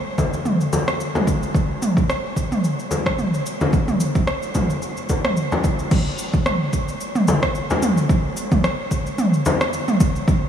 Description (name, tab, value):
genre	downtempo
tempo	110 BPM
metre	4/4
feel	swing 55% on 16ths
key	none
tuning	none
part	deep house drum kit	drums	0.2-10.4 s	crash cymbal, rim click, shaker, toms	-21 LUFS	right 1 dB	overdrive, studio reverb
part	electronic kick drum	drums	0.2-10.4 s	none	-20 LUFS	right 1 dB	overdrive, studio reverb
part	frame drum	percussion	0.2-9.6 s	none	-25 LUFS	left 2 dB	none
room	moderate huge ambient reverb, RT60 8.8 s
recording	dreamy mix soaked in reverb, studio reverb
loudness	-18 LUFS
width	side -9 dB against mid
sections	0.0-5.9 A section; 5.9-10.5 B section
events	none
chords	none